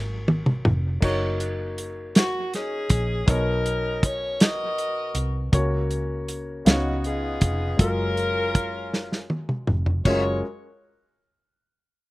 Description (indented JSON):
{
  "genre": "slow gospel",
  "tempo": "53 BPM (dotted quarters)",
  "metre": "6/8",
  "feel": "straight",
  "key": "F# major",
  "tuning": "A4 = 440 Hz",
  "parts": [
    { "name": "warm baby grand piano", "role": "accompaniment", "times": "0.0-10.4 s", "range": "F#2 to E#5", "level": "-30 LUFS", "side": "left 1 dB", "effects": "none" },
    { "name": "vintage muted fingered electric bass", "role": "bass", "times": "0.0-10.4 s", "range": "E#1 to C#2", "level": "-27 LUFS", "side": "equal", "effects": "none" },
    { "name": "warm soul drum kit", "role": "drums", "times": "0.3-10.2 s", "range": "crash cymbal, hi-hat, kick drum, snare drum, toms", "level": "-21 LUFS", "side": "equal", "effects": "none" },
    { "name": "bright saxophone section", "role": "melody", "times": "2.2-10.4 s", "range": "B3 to D#5", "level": "-27 LUFS", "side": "left 1 dB", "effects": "slapback echo" }
  ],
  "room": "little or no reverb",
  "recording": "recorded outdoors, with no room sound",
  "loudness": "-22 LUFS",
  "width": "side -19 dB against mid",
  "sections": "0.0-1.0 A section; 1.0-10.1 B section; 10.1-12.1 C section",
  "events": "drum fill 0.0-1.0, 8.9-10.1",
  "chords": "0.0 F#maj9; 1.0 F#6; 3.3 Bmaj9; 5.5 F#/C#; 6.7 C#9; 7.8 F#maj9"
}